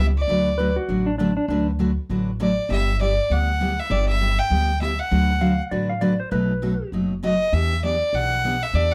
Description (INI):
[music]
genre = country, western swing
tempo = 199 BPM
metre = 4/4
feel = swing 60% on 8ths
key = D major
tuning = A4 = 441 Hz
[part]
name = clear fiddle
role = melody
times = 0.0-8.9 s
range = D5 to G5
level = -25 LUFS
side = equal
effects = none
[part]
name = picked steel-string acoustic guitar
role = accompaniment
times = 0.0-8.9 s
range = B2 to B4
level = -26 LUFS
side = equal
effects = none
[part]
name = upright bass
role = bass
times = 0.0-8.9 s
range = F#1 to E2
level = -26 LUFS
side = equal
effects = none
[part]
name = clean lap steel guitar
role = second line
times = 0.6-1.7, 5.4-6.9 s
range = D4 to F5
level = -28 LUFS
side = equal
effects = none
[sound]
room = light reverb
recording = none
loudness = -22 LUFS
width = mono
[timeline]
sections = 0.0-8.9 A section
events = none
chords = 0.3 D6; 2.7 G6; 5.1 D6; 6.3 B7; 7.5 Em7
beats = | 0.29 0.59 0.89 1.19 | 1.49 1.79 2.09 2.40 | 2.70 3.00 3.30 3.60 | 3.90 4.21 4.51 4.81 | 5.11 5.42 5.72 6.02 | 6.32 6.62 6.93 7.23 | 7.53 7.83 8.13 8.44 | 8.74